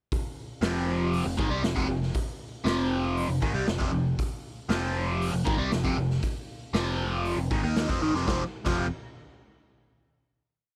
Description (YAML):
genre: classic rock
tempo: 118 BPM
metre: 4/4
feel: straight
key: F minor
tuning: A4 = 440 Hz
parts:
  - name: raw garage drum kit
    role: drums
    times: 0.1-8.8 s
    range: crash cymbal, hi-hat, kick drum, snare drum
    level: -34 LUFS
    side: equal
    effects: none
  - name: biting overdriven guitar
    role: riff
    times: 0.6-8.9 s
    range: F2 to Eb4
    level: -30 LUFS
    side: equal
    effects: phaser
  - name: picked electric bass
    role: bass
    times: 0.6-8.9 s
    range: F1 to F2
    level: -34 LUFS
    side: equal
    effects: none
room: little or no reverb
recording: none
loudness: -28 LUFS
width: mono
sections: 0.1-8.3 riff; 8.3-10.3 final chord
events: none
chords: 0.1 Fm; 8.3 F5